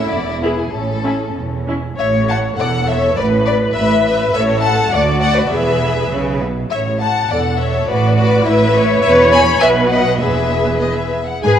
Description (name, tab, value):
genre	quick classical-period movement for string orchestra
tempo	95-105 BPM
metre	2/4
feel	rubato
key	A major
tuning	A4 = 440 Hz
part	rich chamber violin section	melody	0.0-11.5 s	G#4 to B5	-20 LUFS	left 6 dB	none
part	rich chamber violin section	second line	0.0-11.6 s	C#4 to G#5	-18 LUFS	left 1 dB	none
part	dark chamber double bass section	bass	0.1-11.5 s	E1 to G#2	-21 LUFS	right 3 dB	none
part	rich chamber cello section	bass	0.1-11.6 s	D2 to B4	-20 LUFS	right 3 dB	none
part	rich chamber viola section	accompaniment	0.4-11.6 s	C#4 to C#5	-19 LUFS	left 1 dB	none
room	moderate concert hall reverb, RT60 2.2 s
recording	worn, warbling old tape, cassette tape, warbly pitch drift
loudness	-13 LUFS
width	side -9 dB against mid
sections	0.0-2.0 A section; 2.0-11.4 B section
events	none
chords	0.1 E7; 0.7 A; 3.2 A5; 4.9 D; 5.5 E; 6.7 A5; 7.9 E5/A; 9.0 E5; 9.6 B; 10.2 E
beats	0.12 | 0.73 1.35 | 1.98 2.58 | 3.17 3.75 | 4.34 4.92 | 5.51 6.11 | 6.71 7.30 | 7.89 8.47 | 9.04 9.62 | 10.21 10.82 | 11.44